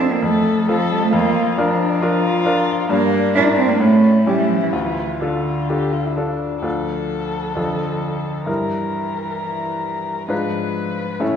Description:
quick classical-period movement for piano trio; 123-137 BPM; 4/4; rubato; D minor; A4 = 440 Hz
warm cello; second line; 0.0-11.4 s; D3 to D4; -20 LUFS; right 3 dB
bright baby grand piano; accompaniment; 0.0-11.4 s; D2 to B4; -21 LUFS; left 1 dB
dark violin; melody; 0.2-11.4 s; C#4 to C#5; -24 LUFS; left 5 dB
wet scoring stage reverb, RT60 1.6 s; heard from further back in the room; -17 LUFS; side -8 dB against mid
0.0-6.6 A section; 6.6-11.4 B section
0.0 F; 1.1 Bb/F; 2.9 Em7b5/G; 3.8 A7; 4.7 Dm; 7.6 Dm/F; 8.5 Edim/G; 10.3 G#dim7

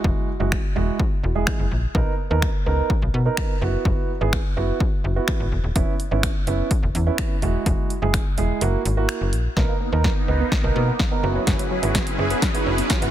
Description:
dance-pop; 126 BPM; 4/4; straight; B major; A4 = 440 Hz
dark baby grand piano; accompaniment; 0.0-13.1 s; G#3 to B4; -26 LUFS; right 5 dB; sidechain pumping
slap-like FM bass; bass; 0.0-13.1 s; D#1 to B2; -22 LUFS; equal; sidechain pumping
punchy analog drum machine; drums; 0.0-13.1 s; finger snaps, hi-hat, kick drum, snare drum; -23 LUFS; equal; soft clipping on snare
supersaw pad; sustained chords; 9.6-13.1 s; F#3 to B4; -27 LUFS; right 1 dB; phaser, sidechain pumping
tight sequenced synth; arpeggios; 9.6-13.1 s; F#3 to B3; -31 LUFS; left 2 dB; chorus, sidechain pumping, dub echo
riser; sound effects; 11.2-13.1 s; -32 LUFS; right 2 dB
digital ambience; dense, heavily limited modern master; -19 LUFS; side -12 dB against mid
0.0-9.6 A section; 9.6-13.1 B section
kick muted 8.6-9.6; build-up 9.6-13.1; drum fill 9.6-13.1; filter sweep 9.6-13.1; riser 11.2-13.1
0.0 Eadd9; 1.9 Bmaj7; 3.6 F#7sus4; 5.8 C#m7; 7.4 Eadd9; 8.6 F#7; 9.6 Bmaj7; 11.2 F#7sus4

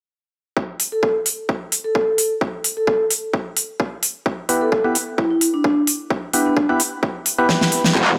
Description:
bass house; 130 BPM; 4/4; swing 54% on 16ths; E minor; A4 = 440 Hz
electronic kick drum; drums; 0.6-7.6 s; -25 LUFS; equal; overdrive, high-pass filter on kick, high-pass filter on room
big-room dance drum kit; drums; 0.8-8.1 s; handclaps, hi-hat, snare drum; -21 LUFS; equal
vibraphone with soft mallets; melody; 0.9-6.5 s; D4 to A4; -23 LUFS; equal; digital delay
percussive organ stab; stabs; 4.5-7.9 s; B3 to B4; -23 LUFS; equal; chorus, cassette tape, sidechain pumping, digital delay
metallic wobble bass; bass; 8.0-8.2 s; E1; -17 LUFS; equal; distortion, chorus, tube saturation, sidechain pumping, high-pass filter
riser; sound effects; 8.0-8.2 s; barely audible
light reverb, digital ambience; -20 LUFS; mono
0.6-8.0 A section
drum fill 7.5-8.0, 8.0
0.6 Em

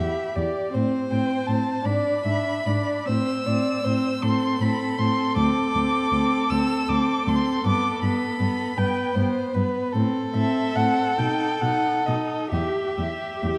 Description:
classical, slow romantic movement for string quartet; 43-54 BPM (dotted quarters); 6/8; rubato; A4 = 440 Hz
warm violin; melody; 0.0-13.6 s; D#5 to E6; -30 LUFS; equal
rich violin; second line; 0.0-13.6 s; G4 to E5; -31 LUFS; equal
rich viola; accompaniment; 0.0-13.6 s; B3 to G4; -29 LUFS; equal
dark cello; bass; 0.0-13.5 s; D2 to B2; -29 LUFS; equal
wet concert hall reverb, RT60 1.9 s; dark, warm production; -24 LUFS; mono
0.0-13.6 A section
0.0 Em; 0.7 Am; 1.9 G#dim; 3.1 Am; 5.4 D5; 7.6 G; 9.9 Am; 11.2 B (rootless); 12.5 Em

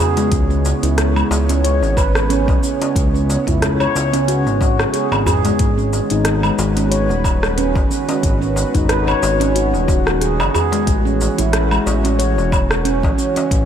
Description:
organic downtempo; 91 BPM; 4/4; swing 55% on 16ths; C# minor; A4 = 440 Hz
warm analog pad; sustained chords; 0.0-13.7 s; C#3 to C#5; -24 LUFS; right 1 dB; chorus, sidechain pumping
handpan; arpeggios; 0.0-13.5 s; G#3 to C#5; -19 LUFS; right 1 dB; ping-pong delay, slapback echo
darbuka; percussion; 0.0-13.5 s; -26 LUFS; left 2 dB; slapback echo
organic electronic drum kit; drums; 0.2-13.7 s; hi-hat, rim click, shaker, woodblock; -23 LUFS; equal
smooth synth bass; bass; 0.3-13.7 s; D#1 to C#2; -19 LUFS; equal
electronic kick drum; drums; 0.3-13.7 s; -18 LUFS; equal
moderate lush hall reverb, RT60 2.8 s; big arena sound; -14 LUFS; side -9 dB against mid
0.0-13.7 A section
0.0 C#m7; 5.6 G#m7; 10.9 F#m7

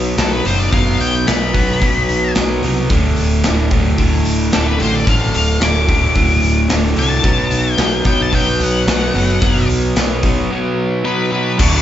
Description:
classic rock; 110 BPM; 4/4; straight; A4 = 440 Hz
overdriven semi-hollow guitar; riff; 0.0-11.8 s; D2 to F#4; -17 LUFS; equal
growling picked electric bass; bass; 0.0-11.8 s; D1 to C2; -19 LUFS; equal; overdrive
octave-fuzz lead guitar; melody; 0.2-11.8 s; A4 to D6; -19 LUFS; left 3 dB; distortion
big rock drum kit; drums; 0.2-11.7 s; crash cymbal, hi-hat, kick drum, snare drum; -18 LUFS; equal
moderate large studio reverb, RT60 1.3 s; band playing live in one room, nothing above 7.8 kHz; -13 LUFS; side -11 dB against mid
0.0-11.6 A section
lead electric guitar solo 0.0-11.6; break 10.5-11.6
0.0 B5; 2.9 D5; 7.2 B5

